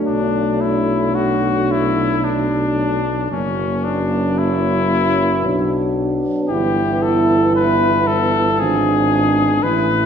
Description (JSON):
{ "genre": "classical, hymn-like piece for brass band", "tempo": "56 BPM", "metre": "3/4", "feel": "rubato", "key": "unclear", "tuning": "A4 = 445 Hz", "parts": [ { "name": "mellow French horn section", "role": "second line", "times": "0.0-10.1 s", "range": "C#4 to E4", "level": "-20 LUFS", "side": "right 3 dB", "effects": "none" }, { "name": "mellow euphonium", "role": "accompaniment", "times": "0.0-10.1 s", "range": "A3 to B3", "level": "-24 LUFS", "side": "left 1 dB", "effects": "none" }, { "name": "mellow trombone", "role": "accompaniment", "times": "0.0-10.1 s", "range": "E3 to F#3", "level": "-24 LUFS", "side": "right 1 dB", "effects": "none" }, { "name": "warm cornet", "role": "melody", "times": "0.1-10.1 s", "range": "C#4 to B4", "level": "-20 LUFS", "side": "left 4 dB", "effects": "none" }, { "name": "mellow tuba", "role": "bass", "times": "0.1-10.1 s", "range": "F#1 to B1", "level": "-22 LUFS", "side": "equal", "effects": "none" } ], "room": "wet scoring stage reverb, RT60 1.5 s", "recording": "minimal, uncompressed stereo recording", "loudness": "-15 LUFS", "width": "side -7 dB against mid", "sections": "0.0-10.1 A section", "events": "none", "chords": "0.1 Bm7; 3.3 F#7; 5.4 Bm; 6.5 Em/G; 8.6 G#dim7" }